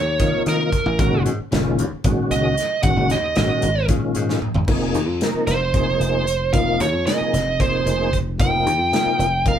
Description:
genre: electric jazz fusion.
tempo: 227 BPM (eighths).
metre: 7/8.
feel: straight.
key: F minor from 4.7 s.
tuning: A4 = 440 Hz.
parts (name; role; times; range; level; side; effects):
smooth overdriven lead guitar; melody; 0.0-9.6 s; Bb4 to G5; -21 LUFS; right 2 dB; none.
dry thumbed slap bass; bass; 0.0-9.6 s; F1 to Eb3; -23 LUFS; equal; none.
tonewheel organ; accompaniment; 0.2-9.6 s; Bb2 to Bb4; -23 LUFS; left 1 dB; slow rotary speaker, chorus vibrato.
modern studio drum kit; drums; 0.2-9.6 s; crash cymbal, hi-hat, kick drum, snare drum, toms; -23 LUFS; equal; none.
room: moderate small room reverb, RT60 0.6 s.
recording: band playing live in one room.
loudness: -17 LUFS.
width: side -9 dB against mid.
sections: 0.0-4.7 A section; 4.7-9.6 B section.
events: lead electric guitar solo 0.0-4.7; drum fill 4.3-4.7.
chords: 0.0 Eb7sus2; 1.0 Ab9sus4; 4.7 Fm9.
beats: 0.20 0.46 0.72 | 0.99 1.25 1.51 1.78 2.04 2.30 2.57 | 2.83 3.10 3.36 3.62 3.89 4.15 4.42 | 4.68 4.95 5.21 5.47 5.74 6.00 6.27 | 6.54 6.80 7.07 7.33 7.60 7.86 8.13 | 8.39 8.66 8.93 9.19 9.46.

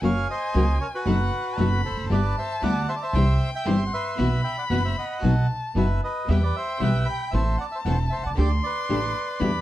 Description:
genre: tango.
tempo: 115 BPM.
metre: 4/4.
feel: rubato.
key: unclear.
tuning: A4 = 441 Hz.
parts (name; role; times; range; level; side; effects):
bandoneon; melody; 0.0-9.6 s; F#4 to B5; -29 LUFS; right 1 dB; plate reverb.
rich violin; second line; 0.0-9.6 s; F#5 to C6; -32 LUFS; left 3 dB; none.
nylon-string guitar; accompaniment; 0.0-9.5 s; B2 to G4; -26 LUFS; left 3 dB; none.
warm chamber string section; stabs; 0.0-9.6 s; B3 to A#4; -35 LUFS; right 2 dB; none.
upright bass; bass; 0.0-9.6 s; E1 to E2; -24 LUFS; right 1 dB; none.
room: light reverb.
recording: dark, warm production.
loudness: -21 LUFS.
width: side -14 dB against mid.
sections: 0.0-9.6 A section.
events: none.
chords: 0.0 F#; 1.1 B7/F#; 2.1 G6; 3.1 C; 4.2 Bsus4; 5.2 B; 6.3 Em; 7.3 Am; 8.4 Dsus4.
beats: | 0.02 0.54 1.06 1.59 | 2.11 2.63 3.14 3.66 | 4.18 4.70 5.23 5.75 | 6.28 6.81 7.33 7.85 | 8.37 8.89 9.41.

